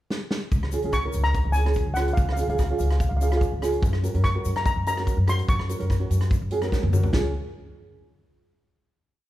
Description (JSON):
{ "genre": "calypso", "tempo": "145 BPM", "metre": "4/4", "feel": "straight", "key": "Db major", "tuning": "A4 = 445 Hz", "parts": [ { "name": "natural country drum kit", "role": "drums", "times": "0.1-7.2 s", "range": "hi-hat, kick drum, rim click, snare drum, toms", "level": "-26 LUFS", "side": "equal", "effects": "none" }, { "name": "upright bass", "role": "bass", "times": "0.5-7.3 s", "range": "Db2 to Gb2", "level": "-24 LUFS", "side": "equal", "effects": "none" }, { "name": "egg shaker", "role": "percussion", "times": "0.5-7.3 s", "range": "none", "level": "-45 LUFS", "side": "left 8 dB", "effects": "none" }, { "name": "nylon-string guitar", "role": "accompaniment", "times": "0.7-7.3 s", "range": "Db4 to Bb4", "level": "-29 LUFS", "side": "right 3 dB", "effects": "none" }, { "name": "steel pan", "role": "melody", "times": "0.9-6.7 s", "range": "F5 to Db6", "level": "-29 LUFS", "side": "left 1 dB", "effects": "none" } ], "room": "light reverb", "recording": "none", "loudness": "-21 LUFS", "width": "side -14 dB against mid", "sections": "0.0-0.5 pickup bar; 0.5-7.1 verse; 7.1-8.8 final chord", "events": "drum fill 0.1-0.5, 6.7-7.1", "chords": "0.0 N.C.; 0.5 Db; 3.8 Gb; 7.1 Db", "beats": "0.11 | 0.52 0.93 1.34 1.76 | 2.17 2.59 3.00 3.41 | 3.83 4.24 4.66 5.07 | 5.48 5.90 6.31 6.72 | 7.14" }